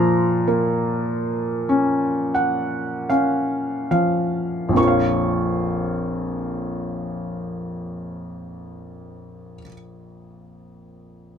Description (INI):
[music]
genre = classical, lyrical solo piano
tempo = 34-54 BPM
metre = 4/4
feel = rubato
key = Bb minor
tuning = A4 = 439 Hz
[part]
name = felt-muted upright piano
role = solo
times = 0.0-11.4 s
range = Bb1 to Db6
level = -20 LUFS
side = equal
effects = none
[sound]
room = light reverb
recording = close, detailed microphones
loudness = -20 LUFS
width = side -8 dB against mid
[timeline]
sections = 0.0-4.8 A section; 4.8-11.4 B section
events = slowing down 0.0-4.8; felt piano fill 1.7-4.8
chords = 0.0 Bbm